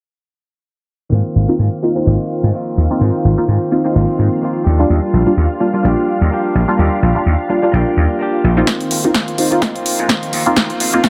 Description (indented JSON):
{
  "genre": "filtered disco house",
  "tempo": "127 BPM",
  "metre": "4/4",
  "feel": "swing 57% on 16ths",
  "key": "unclear",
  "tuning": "A4 = 440 Hz",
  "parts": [
    { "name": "string machine, full ensemble", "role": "sustained chords", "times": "1.1-11.1 s", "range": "F4 to F5", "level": "-27 LUFS", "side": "equal", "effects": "ensemble chorus, sidechain pumping, low-pass filter" },
    { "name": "direct-recorded clean electric guitar", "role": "riff", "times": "1.1-11.1 s", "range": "Eb3 to G4", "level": "-24 LUFS", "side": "equal", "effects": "sidechain pumping, low-pass filter" },
    { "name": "vintage slap bass", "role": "bass", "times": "1.1-11.1 s", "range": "Ab1 to Ab2", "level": "-17 LUFS", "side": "equal", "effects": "sidechain pumping, high-pass filter, low-pass filter" },
    { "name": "funky polysynth comp", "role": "accompaniment", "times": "1.5-11.0 s", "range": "G3 to F4", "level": "-20 LUFS", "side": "equal", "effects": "chorus, phaser, sidechain pumping, low-pass filter" },
    { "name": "electronic kick drum", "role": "drums", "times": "8.7-11.1 s", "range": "none", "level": "-27 LUFS", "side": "equal", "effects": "high-pass filter on kick, studio reverb, high-pass filter on room" },
    { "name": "house drum kit", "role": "drums", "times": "8.7-11.1 s", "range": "hi-hat, snare drum", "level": "-19 LUFS", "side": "equal", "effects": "low-pass filter on snare, studio reverb, sidechain pumping on hats, low-pass filter on hats" }
  ],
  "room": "light reverb",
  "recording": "none",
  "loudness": "-15 LUFS",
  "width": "mono",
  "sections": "1.1-8.7 A section; 8.7-11.1 B section",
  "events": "filter sweep 1.1-8.7, 8.7-11.1; build-up 8.7-11.1; drum fill 8.7-11.1",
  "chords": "1.1 Ab69; 4.7 Ebmaj7; 8.7 Ab69"
}